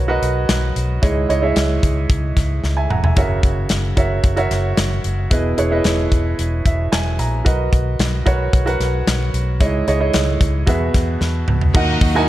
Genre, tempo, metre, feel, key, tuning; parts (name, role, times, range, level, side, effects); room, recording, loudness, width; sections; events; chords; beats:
piano-driven pop; 112 BPM; 4/4; straight; F# mixolydian; A4 = 440 Hz
clear upright piano; accompaniment; 0.0-12.3 s; G#2 to A#5; -20 LUFS; right 2 dB
vintage muted fingered electric bass; bass; 0.0-12.3 s; E1 to E2; -20 LUFS; equal
modern studio drum kit; drums; 0.2-12.1 s; crash cymbal, hi-hat, kick drum, snare drum, toms; -19 LUFS; equal
warm studio violin section; second line; 11.7-12.3 s; D#4 to E5; -24 LUFS; equal
rich studio string section; sustained chords; 11.7-12.3 s; D#3 to F#4; -26 LUFS; left 2 dB
light reverb, studio ambience; dark, warm production; -15 LUFS; side -14 dB against mid
0.0-11.7 A section
drum fill 2.6-3.2, 11.2-11.7; upright piano fill 6.4-7.5
0.0 Bmaj7; 1.0 C#madd9; 3.2 F#7; 5.3 Emaj7; 7.5 Bmaj7; 9.6 C#madd9; 10.7 Eadd9; 11.7 D#m
0.49 | 1.03 1.56 2.10 2.64 | 3.17 3.71 4.24 4.78 | 5.32 5.85 6.39 6.92 | 7.46 7.99 8.53 9.07 | 9.60 10.14 10.67 11.21 | 11.74 12.28